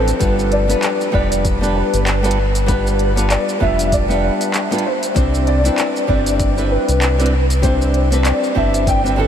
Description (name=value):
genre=sunset chillout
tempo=97 BPM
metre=4/4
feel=swing 58% on 16ths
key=unclear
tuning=A4 = 439 Hz
part: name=dark baby grand piano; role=melody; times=0.0-9.3 s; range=B4 to G5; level=-20 LUFS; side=left 1 dB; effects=ensemble chorus, analog delay
part: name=flamenco guitar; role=accompaniment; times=0.0-9.3 s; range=F3 to C5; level=-19 LUFS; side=left 1 dB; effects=auto-pan, tape echo
part: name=round analog bass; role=bass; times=0.0-9.3 s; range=F1 to C2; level=-18 LUFS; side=equal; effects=none
part: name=smooth R&B drum kit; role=drums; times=0.1-9.2 s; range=handclaps, hi-hat, shaker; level=-24 LUFS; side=equal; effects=none
part: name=electronic kick drum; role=drums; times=0.2-9.0 s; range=none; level=-20 LUFS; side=equal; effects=none
room=moderate huge ambient reverb, RT60 7.3 s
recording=dreamy mix soaked in reverb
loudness=-14 LUFS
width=side -9 dB against mid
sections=0.0-9.3 A section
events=none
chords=0.2 G7; 5.2 Cmaj9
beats=| 0.21 0.83 1.45 2.07 | 2.69 3.31 3.92 4.54 | 5.16 5.78 6.40 7.02 | 7.63 8.25 8.87